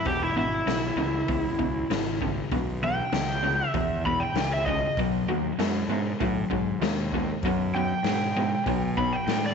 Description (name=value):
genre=blues rock power trio and southern rock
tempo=98 BPM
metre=4/4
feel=straight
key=E major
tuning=A4 = 437 Hz
part: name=overdriven slide guitar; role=melody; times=0.0-9.5 s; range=E4 to B5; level=-28 LUFS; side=right 1 dB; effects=none
part: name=crunchy overdriven guitar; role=riff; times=0.0-9.5 s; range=E2 to G#3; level=-28 LUFS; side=left 1 dB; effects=none
part: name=fuzz fingered electric bass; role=bass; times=0.1-9.5 s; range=E1 to B2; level=-32 LUFS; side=right 1 dB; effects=overdrive
part: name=raw garage drum kit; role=drums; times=0.1-9.4 s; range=hi-hat, kick drum, snare drum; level=-32 LUFS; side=left 4 dB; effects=none
room=moderate echo chamber reverb, RT60 1.4 s, small room reverb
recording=1960s-style stereo, nothing above 7.9 kHz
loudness=-24 LUFS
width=side -6 dB against mid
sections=0.0-9.5 A section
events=none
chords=0.1 E; 5.0 B